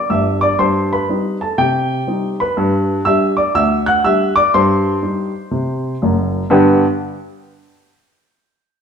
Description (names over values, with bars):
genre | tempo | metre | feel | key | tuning
jazz, stride piano | 122 BPM | 4/4 | swing 65% on 8ths | G major | A4 = 440 Hz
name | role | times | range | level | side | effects
warm upright piano | solo | 0.0-6.8 s | F#1 to F#6 | -14 LUFS | equal | none
room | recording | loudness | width
wet stone room reverb, RT60 1.4 s | band playing live in one room | -13 LUFS | side -7 dB against mid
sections
0.0-6.5 A section; 6.5-8.5 B section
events
none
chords
0.0 G5; 0.6 Cm/G; 2.6 G; 4.5 Cm/G; 6.5 G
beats
0.10 | 0.60 1.09 1.58 2.08 | 2.57 3.06 3.55 4.04 | 4.54 5.03 5.52 6.01 | 6.51